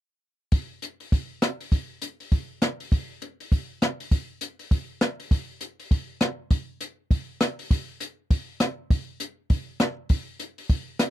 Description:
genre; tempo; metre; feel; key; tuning
jazz; 200 BPM; 4/4; swing 61% on 8ths; none; none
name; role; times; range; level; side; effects
open jazz drum kit; drums; 0.5-11.1 s; hi-hat, kick drum, rim click; -22 LUFS; equal; none
room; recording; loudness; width
light reverb; dry, close 1970s-style studio recording; -24 LUFS; side -14 dB against mid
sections
0.5-5.3 A section; 5.3-11.1 B section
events
none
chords
none

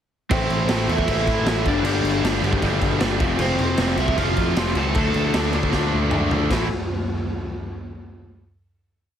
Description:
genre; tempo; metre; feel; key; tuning
punk rock; 155 BPM; 4/4; straight; A minor; A4 = 440 Hz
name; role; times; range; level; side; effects
overdriven semi-hollow guitar; melody; 0.3-5.5 s; C4 to A5; -26 LUFS; right 1 dB; tape echo
distorted electric guitar; riff; 0.3-6.7 s; F2 to E4; -26 LUFS; right 13 dB; distortion
raw garage guitar; riff; 0.3-6.7 s; F2 to D4; -26 LUFS; left 8 dB; overdrive
growling picked electric bass; bass; 0.3-6.7 s; F1 to A2; -24 LUFS; equal; overdrive
raw garage drum kit; drums; 0.3-6.6 s; crash cymbal, kick drum, snare drum, toms; -24 LUFS; equal; none
room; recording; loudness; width
light reverb; heavily compressed radio sound; -19 LUFS; side -9 dB against mid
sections
0.3-6.5 riff; 6.5-8.1 final chord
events
drum fill 5.7-6.5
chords
0.3 Am; 1.7 G; 3.2 F; 5.0 Dm; 6.5 A5

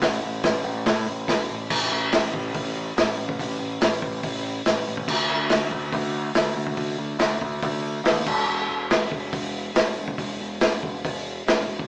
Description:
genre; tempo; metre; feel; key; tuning
garage rock duo or trio; 142 BPM; 4/4; straight; unclear; A4 = 440 Hz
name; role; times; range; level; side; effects
growling picked electric bass; bass; 0.0-11.9 s; E1 to A2; -31 LUFS; equal; overdrive
vintage drum kit; drums; 0.0-11.9 s; crash cymbal, hi-hat, kick drum, snare drum; -26 LUFS; equal; none
room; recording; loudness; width
moderate stone room reverb, RT60 1.2 s; band playing live in one room, small speaker sound; -25 LUFS; mono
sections
0.0-1.7 A section; 1.7-11.9 B section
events
none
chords
none

